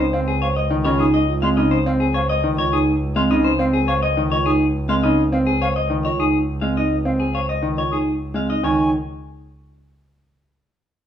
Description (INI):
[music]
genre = classical, minimalist pattern music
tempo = 104 BPM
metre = 3/4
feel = straight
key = Db major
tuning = A4 = 440 Hz
[part]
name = clean electric guitar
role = melody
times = 0.0-8.9 s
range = Ab4 to F5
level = -23 LUFS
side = left 4 dB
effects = none
[part]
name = bright concert grand piano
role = accompaniment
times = 0.0-8.9 s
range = Db3 to C4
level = -24 LUFS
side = left 2 dB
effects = none
[part]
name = vibraphone with soft mallets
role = arpeggios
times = 0.0-8.9 s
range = C4 to C5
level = -21 LUFS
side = right 2 dB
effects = none
[part]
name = rich double bass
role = bass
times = 0.0-8.9 s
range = Db2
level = -24 LUFS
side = right 1 dB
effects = none
[part]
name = silver concert flute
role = arpeggios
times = 0.1-8.9 s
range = Eb5 to Eb6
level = -29 LUFS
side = left 1 dB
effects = none
[sound]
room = light reverb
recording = close, detailed microphones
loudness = -17 LUFS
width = side -9 dB against mid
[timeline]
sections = 0.0-8.6 A section; 8.6-11.1 B section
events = none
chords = 0.0 Dbmaj7; 8.6 Db5